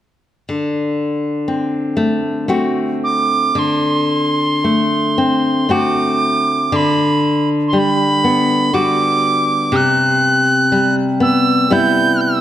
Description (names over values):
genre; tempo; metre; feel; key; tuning
celtic folk, Celtic slow air; 58 BPM; 3/4; uneven beats, rubato; D mixolydian; A4 = 442 Hz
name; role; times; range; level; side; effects
nylon-string guitar; accompaniment; 0.5-12.4 s; C3 to F#4; -15 LUFS; left 1 dB; none
bright reedy tin whistle; melody; 3.0-12.4 s; B5 to G6; -16 LUFS; right 2 dB; none
room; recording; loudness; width
moderate scoring stage reverb, RT60 2.0 s; none; -13 LUFS; side -12 dB against mid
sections
0.5-3.6 A section; 3.6-12.4 B section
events
none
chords
0.5 D7; 6.7 Gmaj7/D; 9.7 Cmaj7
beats
| 0.48 1.49 2.49 | 3.56 4.64 5.70 | 6.73 7.74 8.74 | 9.73 10.72 11.69